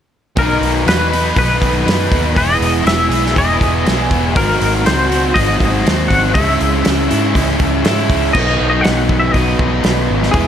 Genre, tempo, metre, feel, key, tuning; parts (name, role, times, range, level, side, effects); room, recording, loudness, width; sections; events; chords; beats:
rock, shoegaze and dream pop; 120 BPM; 4/4; straight; A4 = 440 Hz
twangy electric guitar; melody; 0.4-10.5 s; G#4 to F#5; -18 LUFS; left 2 dB; tremolo, slapback echo
overdriven electric guitar; riff; 0.4-10.5 s; G#2 to B4; -16 LUFS; equal; lush chorus
vintage muted fingered electric bass; bass; 0.4-10.5 s; E1 to G#2; -19 LUFS; equal
loose indie drum kit; drums; 0.4-10.5 s; crash cymbal, hi-hat, kick drum, snare drum; -18 LUFS; equal
moderate scoring stage reverb, RT60 2.0 s, small room ambience; -12 LUFS; side -9 dB against mid
0.4-8.3 A section; 8.3-10.5 B section
0.4 Bmaj7; 2.4 Emaj7; 4.4 G#7; 6.4 C#m; 8.3 B
| 0.38 0.87 1.37 1.87 | 2.37 2.87 3.37 3.86 | 4.36 4.86 5.36 5.86 | 6.36 6.86 7.35 7.85 | 8.35 8.85 9.34 9.84 | 10.34